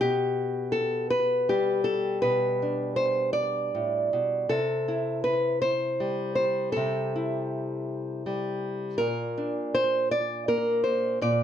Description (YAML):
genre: folk, solo fingerstyle acoustic guitar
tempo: 54 BPM (dotted quarters)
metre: 6/8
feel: straight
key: C major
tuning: A4 = 442 Hz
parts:
  - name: nylon-string guitar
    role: solo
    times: 0.0-11.4 s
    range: A2 to D5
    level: -24 LUFS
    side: equal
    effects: slapback echo
room: light reverb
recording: dark, warm production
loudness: -24 LUFS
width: side -9 dB against mid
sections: 0.0-11.4 A section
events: none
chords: 0.0 G/B; 4.5 C; 9.0 Bb